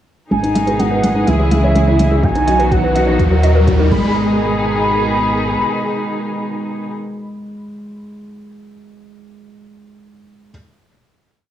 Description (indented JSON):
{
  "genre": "piano and strings electronica",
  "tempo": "125 BPM",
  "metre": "4/4",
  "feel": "straight",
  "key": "G# minor",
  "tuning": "A4 = 440 Hz",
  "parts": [
    { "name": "warm velvety synth lead", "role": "melody", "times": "0.3-6.9 s", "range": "E5 to B5", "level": "-21 LUFS", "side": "right 1 dB", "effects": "chorus" },
    { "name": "muted studio string section", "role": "sustained chords", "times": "0.3-6.9 s", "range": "A#2 to G#4", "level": "-20 LUFS", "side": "equal", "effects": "sidechain pumping, cassette tape, plate reverb" },
    { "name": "warbly dusty pluck", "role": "arpeggios", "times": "0.3-4.4 s", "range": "F#4 to E5", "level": "-26 LUFS", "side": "right 6 dB", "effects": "chorus, sidechain pumping, cassette tape, analog delay, plate reverb" },
    { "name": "felt-muted upright piano", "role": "riff", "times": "0.3-10.5 s", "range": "F#3 to C#5", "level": "-19 LUFS", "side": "equal", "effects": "cassette tape" },
    { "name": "warm sub bass", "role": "bass", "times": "0.3-5.6 s", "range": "G#1 to D#2", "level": "-18 LUFS", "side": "equal", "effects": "sidechain pumping" },
    { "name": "organic electronic drum kit", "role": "drums", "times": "0.3-4.0 s", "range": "crash cymbal, hi-hat, toms", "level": "-35 LUFS", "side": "right 1 dB", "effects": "high-pass filter on toms, cassette tape, high-pass filter on hats, high-pass filter on cymbals" },
    { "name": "riser", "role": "sound effects", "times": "2.1-4.2 s", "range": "none", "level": "-25 LUFS", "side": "left 1 dB", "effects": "none" },
    { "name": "electronic kick drum", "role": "drums", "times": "2.2-4.0 s", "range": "none", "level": "-18 LUFS", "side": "equal", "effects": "overdrive, cassette tape" }
  ],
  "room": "moderate studio reverb, RT60 0.6 s",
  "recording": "home recording on cassette, studio reverb",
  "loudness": "-13 LUFS",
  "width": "side -11 dB against mid",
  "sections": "0.3-4.2 build; 4.2-8.0 final hit",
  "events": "build-up 0.3-4.2; filter sweep on synth arpeggio sound 0.3-4.2; riser 2.1-4.2",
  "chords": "0.3 G#m; 1.3 C#m; 2.2 B; 3.2 D#m; 3.9 G#m",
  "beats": "| 0.32 0.80 1.27 1.75 | 2.23 2.71 3.19 3.67 | 4.16 4.63 5.12 5.59 | 6.08 6.55 7.04 7.51"
}